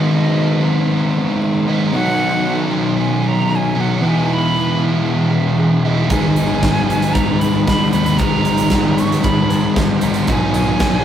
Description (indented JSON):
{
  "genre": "rock, shoegaze and dream pop",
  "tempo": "115 BPM",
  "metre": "4/4",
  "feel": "straight",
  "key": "G# minor",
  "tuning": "A4 = 440 Hz",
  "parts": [
    { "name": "breathy bright jazz flute", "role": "melody", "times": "0.0-11.0 s", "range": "D#5 to C#6", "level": "-22 LUFS", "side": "right 2 dB", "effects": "none" },
    { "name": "fingerpicked twelve-string acoustic guitar", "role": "arpeggios", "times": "0.0-11.0 s", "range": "F#3 to A#4", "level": "-28 LUFS", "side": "right 2 dB", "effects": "none" },
    { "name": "biting overdriven guitar", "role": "riff", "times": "0.0-11.0 s", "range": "G#2 to E4", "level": "-19 LUFS", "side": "right 3 dB", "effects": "none" },
    { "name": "thick fuzz guitar", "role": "riff", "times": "0.0-11.0 s", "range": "E2 to B3", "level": "-17 LUFS", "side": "left 3 dB", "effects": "distortion" },
    { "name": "fuzz picked electric bass", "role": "bass", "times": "6.1-11.0 s", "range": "G#1 to G#2", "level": "-24 LUFS", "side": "right 1 dB", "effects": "overdrive" },
    { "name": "huge arena drum kit", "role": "drums", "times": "6.1-10.9 s", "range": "hi-hat, kick drum, snare drum", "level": "-19 LUFS", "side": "right 1 dB", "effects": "none" }
  ],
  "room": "moderate stone room reverb, RT60 1.0 s",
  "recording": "rough rehearsal-room recording",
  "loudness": "-14 LUFS",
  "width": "side -10 dB against mid",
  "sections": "0.0-11.0 A section",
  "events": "none",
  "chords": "0.0 G#madd9; 1.9 B; 4.0 Emaj7; 6.1 G#madd9; 10.3 B",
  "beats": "0.37 0.89 1.42 | 1.94 2.46 2.98 3.50 | 4.02 4.54 5.06 5.58 | 6.11 6.63 7.15 7.67 | 8.20 8.72 9.24 9.76 | 10.29 10.81"
}